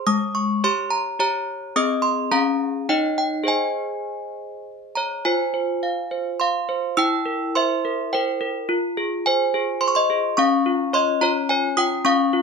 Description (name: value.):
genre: classical, lullaby for handbells.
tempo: 106 BPM.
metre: 3/4.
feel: straight.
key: Ab major, F minor from 5.3 s.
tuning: A4 = 441 Hz.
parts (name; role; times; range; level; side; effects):
desk bells; solo; 0.0-12.4 s; Ab3 to E6; -19 LUFS; equal; none.
room: moderate small room reverb, RT60 0.6 s.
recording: close, detailed microphones.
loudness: -19 LUFS.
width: side -5 dB against mid.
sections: 0.0-5.3 A section; 5.3-12.4 B section.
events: none.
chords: 0.1 Gdim/Ab; 1.7 Ab/C; 2.3 Bbm7/Db; 2.9 Eb7; 3.5 Ab; 5.3 Fm; 7.0 C7/E; 8.7 Fm; 10.4 Db.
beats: | 0.07 0.63 1.19 | 1.75 2.31 2.88 | 3.47 4.07 4.67 | 5.26 5.83 6.40 | 6.97 7.55 8.12 | 8.69 9.26 9.82 | 10.38 10.94 11.49 | 12.06.